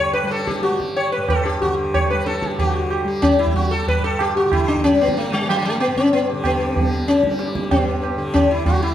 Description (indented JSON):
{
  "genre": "indian classical, Hindustani",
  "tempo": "187 BPM",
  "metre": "4/4",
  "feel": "straight",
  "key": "G raga yaman",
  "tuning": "A4 = 440 Hz",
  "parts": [
    { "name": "sitar", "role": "melody", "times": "0.0-8.9 s", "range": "F#3 to C#5", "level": "-18 LUFS", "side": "left 2 dB", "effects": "slapback echo" },
    { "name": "tanpura", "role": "drone", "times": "0.0-8.9 s", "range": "G2 to G3", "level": "-28 LUFS", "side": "left 1 dB", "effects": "none" },
    { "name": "tabla", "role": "percussion", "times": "0.1-8.9 s", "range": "none", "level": "-22 LUFS", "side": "right 3 dB", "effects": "none" }
  ],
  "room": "light reverb",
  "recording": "close, detailed microphones",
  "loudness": "-17 LUFS",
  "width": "side -11 dB against mid",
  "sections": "0.0-2.6 A section; 2.6-8.9 B section",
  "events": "speeding up 0.0-8.9",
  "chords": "none",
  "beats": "0.30 0.63 0.96 | 1.28 1.61 1.93 2.26 | 2.58 2.91 3.23 3.55 | 3.88 4.20 4.52 4.84 | 5.16 5.48 5.80 6.12 | 6.44 6.76 7.08 7.40 | 7.71 8.03 8.35 8.67"
}